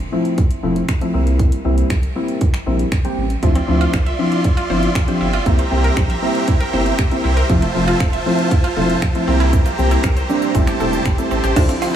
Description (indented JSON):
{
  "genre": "dance-pop",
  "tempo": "118 BPM",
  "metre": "4/4",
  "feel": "straight",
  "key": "unclear",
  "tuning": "A4 = 439 Hz",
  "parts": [
    { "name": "saturated sub bass", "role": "bass", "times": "0.0-11.7 s", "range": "E1 to D2", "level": "-19 LUFS", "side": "equal", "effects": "sidechain pumping" },
    { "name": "pop drum kit", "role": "drums", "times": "0.0-11.9 s", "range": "crash cymbal, finger snaps, hi-hat, kick drum, shaker", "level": "-19 LUFS", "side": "right 1 dB", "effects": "none" },
    { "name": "soft electric-piano-like synth keys", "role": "accompaniment", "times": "0.1-11.8 s", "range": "F3 to C5", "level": "-20 LUFS", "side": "left 1 dB", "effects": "chorus, sidechain pumping" },
    { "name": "supersaw chords", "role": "sustained chords", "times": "3.4-12.0 s", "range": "D3 to C6", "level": "-22 LUFS", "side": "right 2 dB", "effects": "sidechain pumping" },
    { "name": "mallet-like synth pluck", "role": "arpeggios", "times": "3.4-11.8 s", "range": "E3 to E5", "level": "-26 LUFS", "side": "right 2 dB", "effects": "chorus, sidechain pumping, analog delay" },
    { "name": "direct-recorded clean electric guitar", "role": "riff", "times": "11.6-11.9 s", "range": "D4 to F4", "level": "-22 LUFS", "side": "right 5 dB", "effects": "ensemble chorus" }
  ],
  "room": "light reverb, digital ambience",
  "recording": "none",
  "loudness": "-14 LUFS",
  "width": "side -10 dB against mid",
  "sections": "0.0-11.6 A section",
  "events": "none",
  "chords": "0.0 Fmaj7; 1.1 C7; 3.4 Dm9; 5.5 C7; 7.5 Fmaj7; 9.3 C7; 10.5 Am7"
}